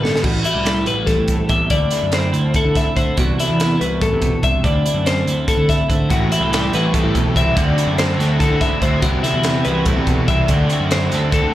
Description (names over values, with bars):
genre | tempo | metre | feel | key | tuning
math rock and midwest emo | 287 BPM (eighths) | 7/8 | straight | unclear | A4 = 441 Hz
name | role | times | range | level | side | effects
twelve-string electric guitar | accompaniment | 0.0-11.5 s | E2 to G4 | -21 LUFS | right 3 dB | analog chorus
twelve-string electric guitar | arpeggios | 0.0-11.5 s | E4 to E5 | -21 LUFS | left 4 dB | none
fuzz picked electric bass | bass | 0.0-11.5 s | A1 to D3 | -21 LUFS | equal | overdrive
crisp fusion drum kit | drums | 0.1-11.4 s | crash cymbal, hi-hat, kick drum, snare drum | -21 LUFS | equal | none
overdriven semi-hollow guitar | riff | 6.1-11.5 s | A2 to F#4 | -22 LUFS | equal | slapback echo
room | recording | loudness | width
small room reverb | live gig heard through the venue's PA, club reverb | -14 LUFS | side -13 dB against mid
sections
0.2-11.5 A section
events
drum fill 0.0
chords
0.2 Am7; 1.7 D9; 3.2 Cmaj9#11; 4.6 D9; 6.1 Am7; 7.6 D9; 9.0 Cmaj9#11; 10.5 D9